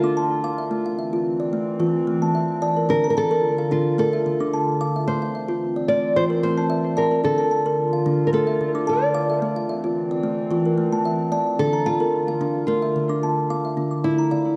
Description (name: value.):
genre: world meditative, meditative tuned percussion.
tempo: 110 BPM.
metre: 4/4.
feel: swing 53% on 16ths.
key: D minor.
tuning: A4 = 438 Hz.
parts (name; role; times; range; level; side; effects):
nylon-string guitar; melody; 0.0-14.6 s; E4 to D5; -26 LUFS; equal; analog delay.
warbly tape-like pad; sustained chords; 0.0-14.6 s; D3 to F4; -29 LUFS; equal; chorus, built-in reverb.
kalimba; arpeggios; 0.0-14.6 s; D3 to D6; -24 LUFS; equal; none.
room: wet plate reverb, RT60 2.3 s.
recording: echo-heavy mix.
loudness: -22 LUFS.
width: mono.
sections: 0.0-13.8 A section.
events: none.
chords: 0.0 Dm; 0.7 Am; 2.9 Dm; 5.1 Am; 7.2 Dm; 9.4 Am; 11.6 Dm.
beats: 0.17 | 0.71 1.26 1.80 2.35 | 2.89 3.44 3.98 4.53 | 5.07 5.61 6.16 6.70 | 7.25 7.79 8.33 8.88 | 9.42 9.96 10.51 11.05 | 11.59 12.14 12.68 13.23 | 13.77 14.32.